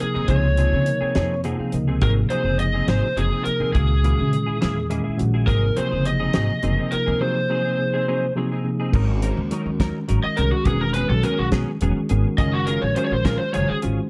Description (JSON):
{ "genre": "electric jazz fusion", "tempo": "69 BPM (dotted quarters)", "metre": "6/8", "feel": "straight", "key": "Ab mixolydian", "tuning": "A4 = 440 Hz", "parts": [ { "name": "lead guitar through a small cranked amp", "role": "melody", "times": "0.0-13.8 s", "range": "Gb4 to Eb5", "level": "-27 LUFS", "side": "equal", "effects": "overdrive" }, { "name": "mellow tine electric piano", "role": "accompaniment", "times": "0.0-14.1 s", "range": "Bb2 to Gb5", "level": "-27 LUFS", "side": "equal", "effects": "none" }, { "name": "semi-hollow electric guitar", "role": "stabs", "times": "0.0-14.0 s", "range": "F3 to Bb4", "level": "-33 LUFS", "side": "equal", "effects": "ensemble chorus" }, { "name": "upright bass", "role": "bass", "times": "0.0-14.0 s", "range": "E1 to Db3", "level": "-25 LUFS", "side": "equal", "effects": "none" }, { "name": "damped 70s drum kit", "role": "drums", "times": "0.0-14.0 s", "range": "crash cymbal, hi-hat, kick drum, snare drum", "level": "-26 LUFS", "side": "equal", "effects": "none" } ], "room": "light reverb, small room ambience", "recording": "dark, warm production", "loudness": "-21 LUFS", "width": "mono", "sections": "0.0-8.9 A section; 8.9-14.1 B section", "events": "tine electric piano fill 1.2-2.0, 4.6-5.5; lead electric guitar solo 8.9-14.1", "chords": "0.3 Dbmaj9; 2.0 Ab7; 3.8 Dbm6; 5.5 Ab7; 8.9 Ab9sus4; 10.7 E69; 12.4 Ebm11/Gb" }